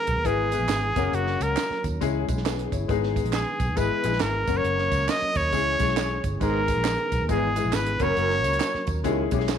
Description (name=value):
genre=uptempo 1960s-style soul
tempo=136 BPM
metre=4/4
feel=swing 62% on 8ths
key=unclear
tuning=A4 = 440 Hz
part: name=bright trumpet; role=melody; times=0.0-8.9 s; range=F#4 to D#5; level=-26 LUFS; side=right 1 dB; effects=none
part: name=tonewheel organ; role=sustained chords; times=0.0-9.6 s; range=D#3 to A#4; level=-35 LUFS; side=right 1 dB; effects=slow rotary speaker
part: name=vintage muted fingered electric bass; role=bass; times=0.1-9.6 s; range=F#1 to D#2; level=-28 LUFS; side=equal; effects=none
part: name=compact cocktail drum kit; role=drums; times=0.1-9.6 s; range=hi-hat, kick drum, snare drum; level=-30 LUFS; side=right 4 dB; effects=none
part: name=clear grand piano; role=accompaniment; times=0.2-9.6 s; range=G#3 to C#5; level=-29 LUFS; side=left 11 dB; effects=none
part: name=tambourine and handclaps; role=percussion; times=0.3-9.6 s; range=none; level=-38 LUFS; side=right 13 dB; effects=none
part: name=breathy baritone saxophone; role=riff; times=6.4-9.3 s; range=D#2 to G#2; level=-32 LUFS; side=right 12 dB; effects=none
room=moderate plate reverb, RT60 1.4 s, studio ambience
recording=1960s-style stereo with parts hard left and right, faint mains hum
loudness=-22 LUFS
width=side -8 dB against mid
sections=0.0-9.6 A section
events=none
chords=0.2 E/G#; 0.9 F#; 2.0 C#m; 2.9 G#m; 3.8 E/G#; 4.4 F#; 5.5 C#m; 6.4 G#m; 7.3 E/G#; 7.9 F#; 9.0 C#m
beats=0.25 0.69 | 1.13 1.57 2.01 2.45 | 2.89 3.33 3.77 4.21 | 4.65 5.09 5.53 5.97 | 6.41 6.85 7.29 7.73 | 8.17 8.61 9.05 9.49